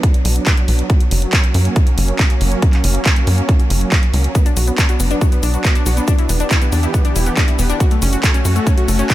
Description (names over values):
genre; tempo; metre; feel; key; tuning
uplifting trance; 139 BPM; 4/4; straight; unclear; A4 = 440 Hz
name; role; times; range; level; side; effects
supersaw pad; sustained chords; 0.0-9.1 s; E3 to G4; -23 LUFS; right 2 dB; sidechain pumping, low-pass filter
big-room dance drum kit; drums; 0.0-9.1 s; handclaps, hi-hat, shaker; -21 LUFS; equal; sidechain pumping on hats, small room ambience, sidechain pumping on perc
electronic kick drum; drums; 0.0-9.1 s; none; -14 LUFS; equal; small room ambience
tight sequencer bass; bass; 0.2-9.0 s; E1 to F#2; -16 LUFS; equal; sidechain pumping
analog pluck; arpeggios; 4.4-9.1 s; A3 to F#4; -22 LUFS; left 4 dB; chorus, sidechain pumping, dub echo
room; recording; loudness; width
little or no reverb; none; -13 LUFS; side -15 dB against mid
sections
0.0-9.1 A section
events
filter sweep on supersaw synth 0.0-9.1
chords
0.0 Bm; 0.9 F#; 4.4 Bm; 6.1 Em7; 7.8 F#m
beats
0.04 0.47 | 0.90 1.33 1.76 2.19 | 2.62 3.06 3.49 3.92 | 4.35 4.78 5.21 5.65 | 6.08 6.51 6.94 7.37 | 7.80 8.24 8.67 9.10